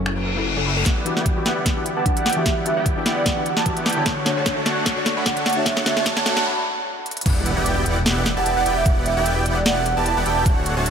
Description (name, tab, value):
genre	future bass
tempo	150 BPM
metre	4/4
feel	swing 54% on 16ths, half-time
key	unclear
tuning	A4 = 441 Hz
part	soft round pluck	accompaniment	0.0-6.5 s	D3 to D5	-28 LUFS	left 3 dB	analog chorus, sidechain pumping, tape echo
part	airy breathy pad	sustained chords	0.0-6.4 s	C#3 to F#5	-35 LUFS	right 3 dB	none
part	wide detuned saw bass	bass	0.0-0.8, 7.3-10.9 s	D1 to F#1	-24 LUFS	equal	chorus, sidechain pumping
part	wide unison pluck	arpeggios	0.1-0.8 s	C#4 to C#5	-34 LUFS	left 1 dB	sidechain pumping, tape echo
part	trap drum kit	drums	0.1-10.9 s	crash cymbal, finger snaps, hi-hat, snare drum	-23 LUFS	equal	overdrive
part	reverse cymbal, riser and impact	sound effects	0.2-8.9 s	none	-29 LUFS	left 1 dB	none
part	supersaw chords	riff	0.9-10.9 s	A3 to B5	-24 LUFS	equal	sidechain pumping, low-pass filter
part	electronic kick drum	drums	0.9-10.5 s	none	-22 LUFS	equal	overdrive
part	vibraphone with soft mallets	melody	2.0-10.5 s	D5 to B5	-24 LUFS	right 5 dB	sidechain pumping, dub echo
room	moderate lush hall reverb, RT60 2.6 s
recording	high-pass filter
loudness	-18 LUFS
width	side -7 dB against mid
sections	0.9-7.3 A section; 7.3-10.9 B section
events	reverse cymbal 0.2-0.9; build-up 0.9-7.3; drum fill 0.9-6.5, 7.1; riser 0.9-6.5; filter sweep on supersaw synth 0.9-7.3; filter sweep 0.9-7.3; break 6.5-7.3; drop 7.3-10.9; impact 7.3-8.9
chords	0.0 F#m7; 0.9 Em9; 4.1 Dmaj7; 7.3 Em9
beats	0.06 0.46 | 0.86 1.26 1.66 2.06 | 2.46 2.86 3.26 3.66 | 4.06 4.46 4.86 5.26 | 5.66 6.06 6.46 6.86 | 7.26 7.66 8.06 8.46 | 8.86 9.26 9.66 10.06 | 10.46 10.86